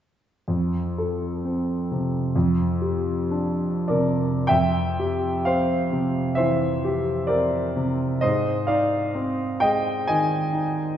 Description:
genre	classical, impressionist solo piano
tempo	45-68 BPM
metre	4/4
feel	rubato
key	unclear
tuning	A4 = 440 Hz
part	clear concert grand piano	solo	0.5-11.0 s	F2 to Ab5	-21 LUFS	equal	none
room	wet concert hall reverb, RT60 2.0 s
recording	recorded in a church or concert hall, nothing above 7.8 kHz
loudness	-21 LUFS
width	side -10 dB against mid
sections	0.5-4.5 A section; 4.5-11.0 B section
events	none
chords	0.5 F; 2.3 Dm7/F; 4.5 Fsus2; 8.2 Ab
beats	| 0.48 1.45 2.35 3.30 | 4.49 5.46 6.38 7.30 | 8.23 9.15 10.08

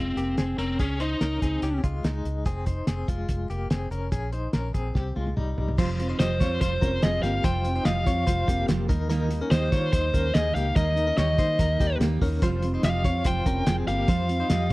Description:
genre	jangly indie pop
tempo	144 BPM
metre	4/4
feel	straight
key	F minor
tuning	A4 = 441 Hz
part	biting lead guitar	melody	0.0-1.8, 6.2-14.7 s	C4 to G5	-27 LUFS	equal	overdrive, slapback echo
part	direct-recorded clean electric guitar	arpeggios	0.0-14.7 s	G3 to Eb5	-32 LUFS	left 3 dB	tremolo, slapback echo
part	vintage muted fingered electric bass	bass	0.0-14.7 s	F1 to Eb3	-28 LUFS	equal	none
part	cloth-damped thuddy drum kit	drums	0.2-14.7 s	crash cymbal, hi-hat, kick drum, snare drum, toms	-25 LUFS	equal	none
part	fingerpicked steel-string acoustic guitar	accompaniment	5.8-14.7 s	Eb3 to F4	-30 LUFS	right 4 dB	none
room	small room reverb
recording	dry, close 1970s-style studio recording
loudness	-22 LUFS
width	side -20 dB against mid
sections	0.0-5.8 A section; 5.8-14.7 B section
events	drum fill 5.0-5.8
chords	0.0 Fm; 0.8 Dbsus2; 2.5 Fm; 4.1 Bbm7; 5.0 Csus4; 5.8 Fsus2; 8.9 Eb; 12.4 Fsus2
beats	0.38 | 0.80 1.21 1.63 2.04 | 2.46 2.88 3.29 3.71 | 4.12 4.54 4.95 5.37 | 5.78 6.20 6.61 7.03 | 7.44 7.86 8.27 8.69 | 9.10 9.52 9.93 10.34 | 10.76 11.17 11.59 12.00 | 12.42 12.83 13.25 13.66 | 14.08 14.49

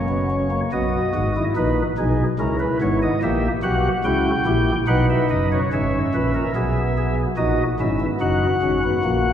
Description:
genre	classical, baroque-style 4-part fugue for pipe organ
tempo	72 BPM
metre	3/4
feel	straight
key	B major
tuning	A4 = 440 Hz
part	pipe organ, flutes	solo	0.0-9.3 s	F#1 to G5	-18 LUFS	equal	none
room	wet church reverb, RT60 2.9 s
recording	heard from further back in the room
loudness	-18 LUFS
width	side -9 dB against mid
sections	0.7-5.7 A section; 5.7-9.3 B section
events	none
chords	0.0 F#; 0.7 B; 2.4 C#m7; 3.2 A#dim7; 4.9 B; 5.7 E/G#; 7.4 A#dim; 8.2 D#m/F#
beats	| 0.72 1.56 2.39 | 3.21 4.03 4.87 | 5.71 6.54 7.37 | 8.20 9.03

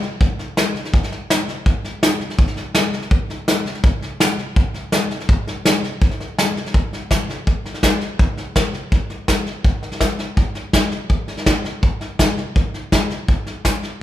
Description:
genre	country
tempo	165 BPM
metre	4/4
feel	straight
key	none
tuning	none
part	soft brush drum kit	drums	0.0-13.9 s	hi-hat, kick drum, snare drum	-17 LUFS	equal	none
room	light reverb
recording	none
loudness	-17 LUFS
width	side -13 dB against mid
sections	0.0-6.7 A section; 6.7-14.0 B section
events	none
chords	none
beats	0.21 0.57 | 0.94 1.30 1.67 2.03 | 2.39 2.75 3.12 3.48 | 3.84 4.21 4.57 4.93 | 5.29 5.66 6.02 6.38 | 6.75 7.11 7.47 7.83 | 8.20 8.56 8.93 9.29 | 9.65 10.02 10.38 10.74 | 11.11 11.47 11.83 12.20 | 12.56 12.93 13.29 13.65

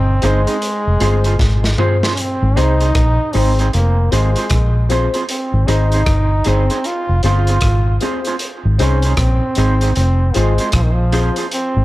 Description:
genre	roots reggae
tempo	77 BPM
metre	4/4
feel	swing 62% on 16ths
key	unclear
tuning	A4 = 440 Hz
part	clear trombone	melody	0.0-11.8 s	Eb3 to F4	-21 LUFS	right 1 dB	tape echo
part	vintage muted fingered electric bass	bass	0.0-11.8 s	F1 to C2	-14 LUFS	equal	none
part	electric guitar through a small old amp	accompaniment	0.2-11.5 s	C4 to C5	-23 LUFS	right 4 dB	tape echo
part	dark concert grand piano	stabs	0.2-11.4 s	C4 to C5	-23 LUFS	left 6 dB	none
part	crunchy breakbeat drum kit	drums	0.2-11.7 s	hi-hat, kick drum, rim click, snare drum, toms	-21 LUFS	equal	none
room	studio reverb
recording	echo-heavy mix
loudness	-13 LUFS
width	side -17 dB against mid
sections	0.0-11.8 A section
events	drum fill 1.4-2.2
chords	0.0 Ab; 0.6 Fm; 2.2 Ab; 3.7 Fm; 5.3 Ab; 6.8 Fm; 8.4 Ab; 10.0 Fm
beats	0.62 1.40 | 2.17 2.95 3.73 4.51 | 5.29 6.07 6.84 7.62 | 8.40 9.18 9.96 10.74 | 11.52

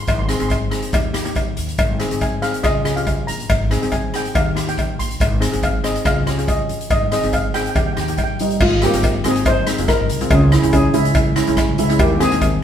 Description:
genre	calypso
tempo	141 BPM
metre	4/4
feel	swing 54% on 16ths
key	Ab major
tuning	A4 = 440 Hz
part	steel pan	melody	0.0-12.6 s	G3 to C6	-21 LUFS	equal	none
part	upright bass	bass	0.0-12.6 s	F1 to Eb2	-22 LUFS	right 1 dB	none
part	street-band drum kit	drums	0.1-12.5 s	crash cymbal, hi-hat, kick drum, rim click	-20 LUFS	equal	none
part	cowbell	percussion	0.1-12.5 s	none	-25 LUFS	left 4 dB	none
part	steel pan	accompaniment	0.3-12.5 s	Ab3 to Ab4	-23 LUFS	right 1 dB	none
room	wet stone room reverb, RT60 1.1 s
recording	band playing live in one room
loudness	-15 LUFS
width	side -9 dB against mid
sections	0.0-8.6 A section; 8.6-12.6 B section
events	none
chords	0.1 Ab; 0.9 Eb; 1.8 Ab; 2.6 Db; 3.5 Ab; 4.4 Eb; 5.2 Ab; 6.1 Dbadd9; 6.9 Ab; 7.8 Eb6; 8.6 Ab; 10.3 Dbm; 12.0 Ebsus4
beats	| 0.08 0.51 0.94 1.36 | 1.79 2.22 2.65 3.07 | 3.50 3.93 4.35 4.78 | 5.21 5.63 6.06 6.48 | 6.91 7.34 7.76 8.19 | 8.61 9.04 9.46 9.88 | 10.31 10.73 11.15 11.58 | 12.00 12.42

